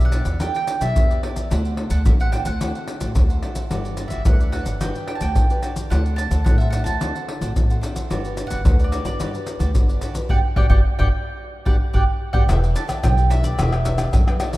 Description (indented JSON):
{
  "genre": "samba and choro",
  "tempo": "109 BPM",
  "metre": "4/4",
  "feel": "straight",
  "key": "G major",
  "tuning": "A4 = 438 Hz",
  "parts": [
    { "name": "mandolin", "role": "melody", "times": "0.0-14.4 s", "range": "D5 to A5", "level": "-28 LUFS", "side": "right 3 dB", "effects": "none" },
    { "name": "cavaquinho", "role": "accompaniment", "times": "0.0-14.6 s", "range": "D4 to F#5", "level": "-36 LUFS", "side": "right 4 dB", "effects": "none" },
    { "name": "nylon-string guitar", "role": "accompaniment", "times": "0.0-14.6 s", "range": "A2 to B4", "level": "-34 LUFS", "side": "left 2 dB", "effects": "none" },
    { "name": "upright bass", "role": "bass", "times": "0.0-14.4 s", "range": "E1 to F#2", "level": "-22 LUFS", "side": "equal", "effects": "none" },
    { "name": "maracas, pandeiro, surdo and tamborim", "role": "percussion", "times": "0.0-14.6 s", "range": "none", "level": "-20 LUFS", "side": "equal", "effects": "none" }
  ],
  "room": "light reverb, small room ambience",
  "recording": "rough home demo mix",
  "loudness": "-18 LUFS",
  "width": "side -18 dB against mid",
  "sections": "0.0-12.5 A section; 12.5-14.6 B section",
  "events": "band accent 10.3-12.5",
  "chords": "0.0 Em7; 1.5 D7; 3.7 Gmaj7; 5.9 D7; 8.1 Gmaj7; 12.5 Em7"
}